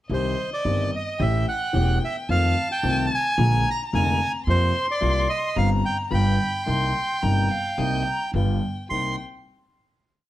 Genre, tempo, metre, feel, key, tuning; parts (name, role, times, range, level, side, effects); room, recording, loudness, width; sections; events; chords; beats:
tango; 109 BPM; 4/4; rubato; C minor; A4 = 440 Hz
bandoneon; melody; 0.1-9.2 s; C5 to C6; -25 LUFS; right 2 dB; plate reverb
warm violin; second line; 0.1-9.2 s; Eb5 to C6; -30 LUFS; left 3 dB
warm concert grand piano; accompaniment; 0.1-9.1 s; E1 to G4; -27 LUFS; left 3 dB
upright bass; bass; 0.1-9.1 s; E1 to F2; -24 LUFS; right 1 dB
light reverb; -20 LUFS; side -14 dB against mid
0.1-8.9 A section; 8.9-10.3 final chord
0.1 Cm; 1.2 A7; 2.3 F7; 3.4 Bb7; 4.5 Fsus4; 5.6 G7sus4; 6.1 G7; 6.7 Cm7; 8.3 G7; 8.9 Cm7
| 0.09 0.65 1.20 1.74 | 2.29 2.84 3.39 3.94 | 4.48 5.02 5.57 6.12 | 6.67 7.23 7.78 8.34 | 8.90